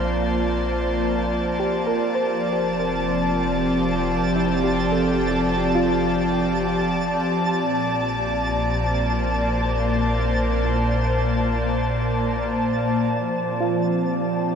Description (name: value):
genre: ambient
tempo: 65 BPM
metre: 3/4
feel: straight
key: F major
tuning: A4 = 437 Hz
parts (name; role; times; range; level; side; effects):
- airy breathy pad; sustained chords; 0.0-14.6 s; Bb2 to A5; -21 LUFS; equal; chorus, shimmer reverb
- soft round pluck; arpeggios; 0.0-7.6, 13.6-14.6 s; E4 to C5; -29 LUFS; right 2 dB; lush chorus, ping-pong delay, shimmer reverb
- round analog bass; bass; 0.0-13.1 s; F1 to Bb1; -28 LUFS; equal; none
- analog drone; drone; 0.0-14.6 s; F3 to C4; -35 LUFS; equal; none
- twinkling granular texture; texture; 2.6-13.2 s; A5; -31 LUFS; right 2 dB; built-in reverb, shimmer reverb
room: wet huge ambient reverb, RT60 8.4 s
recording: in a vast, echoing space, cassette tape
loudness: -20 LUFS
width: side -7 dB against mid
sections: 0.0-13.1 A section; 13.1-14.6 B section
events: none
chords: 0.0 Bbmaj7; 2.1 F6; 7.6 Bbmaj7; 13.1 F6